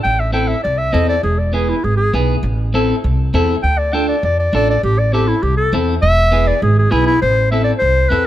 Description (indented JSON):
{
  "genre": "latin, cumbia",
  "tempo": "201 BPM",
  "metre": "4/4",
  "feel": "straight",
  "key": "A harmonic minor",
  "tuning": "A4 = 438 Hz",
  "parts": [
    { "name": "clear clarinet", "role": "melody", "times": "0.0-8.3 s", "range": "E4 to G5", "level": "-16 LUFS", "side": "left 1 dB", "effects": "none" },
    { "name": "upright bass", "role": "bass", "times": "0.0-8.3 s", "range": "E1 to F2", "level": "-16 LUFS", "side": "equal", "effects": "none" },
    { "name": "clean electric guitar", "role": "accompaniment", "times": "0.3-8.3 s", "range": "B3 to A4", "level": "-20 LUFS", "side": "equal", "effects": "spring reverb" }
  ],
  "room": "little or no reverb",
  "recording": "close, detailed microphones",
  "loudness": "-13 LUFS",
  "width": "side -13 dB against mid",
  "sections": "0.0-7.2 A section; 7.2-8.3 B section",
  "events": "clarinet solo 0.0-7.2",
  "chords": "0.0 Am; 1.2 E; 2.4 Am; 3.6 Dm; 4.8 Am; 6.0 E; 7.2 Am"
}